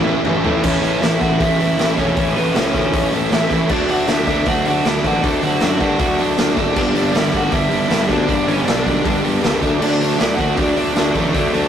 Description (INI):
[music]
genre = punk rock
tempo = 157 BPM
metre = 4/4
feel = straight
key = A mixolydian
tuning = A4 = 440 Hz
[part]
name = biting lead guitar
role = melody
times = 0.0-11.7 s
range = A3 to A5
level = -22 LUFS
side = equal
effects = overdrive, digital delay
[part]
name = biting overdriven guitar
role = riff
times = 0.0-11.7 s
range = G2 to D4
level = -23 LUFS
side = left 6 dB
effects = none
[part]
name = crunchy overdriven guitar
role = riff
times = 0.0-0.6 s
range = A2 to A3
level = -24 LUFS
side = equal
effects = none
[part]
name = distorted electric guitar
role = riff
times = 0.0-11.7 s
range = G2 to E4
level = -20 LUFS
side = right 3 dB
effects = distortion
[part]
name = fuzz picked electric bass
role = bass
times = 0.0-11.7 s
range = E1 to G2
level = -21 LUFS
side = equal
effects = overdrive
[part]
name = raw garage drum kit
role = drums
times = 0.2-11.6 s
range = crash cymbal, hi-hat, kick drum, snare drum, toms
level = -21 LUFS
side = equal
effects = none
[sound]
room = light reverb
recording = rough rehearsal-room recording, tube saturation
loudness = -14 LUFS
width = side -9 dB against mid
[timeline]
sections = 0.6-11.7 A section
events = drum fill 0.0-0.6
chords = 0.0 A; 3.7 D; 6.8 G; 9.6 D